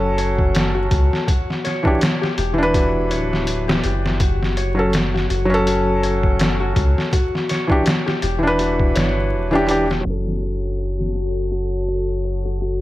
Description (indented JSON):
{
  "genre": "trip hop",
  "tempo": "82 BPM",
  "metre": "4/4",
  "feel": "swing 56% on 16ths",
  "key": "F# phrygian",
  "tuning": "A4 = 440 Hz",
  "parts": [
    { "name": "felt-muted upright piano", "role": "accompaniment", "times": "0.0-12.8 s", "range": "E3 to B4", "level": "-21 LUFS", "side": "equal", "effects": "harmonic tremolo, tape echo" },
    { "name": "Celtic harp", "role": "arpeggios", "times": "0.0-12.8 s", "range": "F#4 to C#5", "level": "-26 LUFS", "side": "left 2 dB", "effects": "low-pass filter, tape echo" },
    { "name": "soft dub sub bass", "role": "bass", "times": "0.0-12.8 s", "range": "D1 to C#2", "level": "-22 LUFS", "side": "equal", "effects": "none" },
    { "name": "trip hop sampler-style drum kit", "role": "drums", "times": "0.2-12.8 s", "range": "hi-hat, kick drum, snare drum", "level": "-20 LUFS", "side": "equal", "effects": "low-pass filter on kick, studio reverb, low-pass filter on hats, low-pass filter on snare" },
    { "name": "warbly tape-like pad", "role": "sustained chords", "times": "10.1-12.8 s", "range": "F#4 to A5", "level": "-28 LUFS", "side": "left 2 dB", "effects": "chorus, built-in reverb" }
  ],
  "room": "little or no reverb",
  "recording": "vinyl crackle, low-pass filter",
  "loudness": "-17 LUFS",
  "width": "side -16 dB against mid",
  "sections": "0.0-10.1 A section; 10.1-12.8 B section",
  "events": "filter sweep on harp 10.1-12.8; filter sweep 10.1-12.8",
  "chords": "0.0 F#m; 1.3 Em7; 4.2 F#m; 7.1 Em7; 10.1 F#m"
}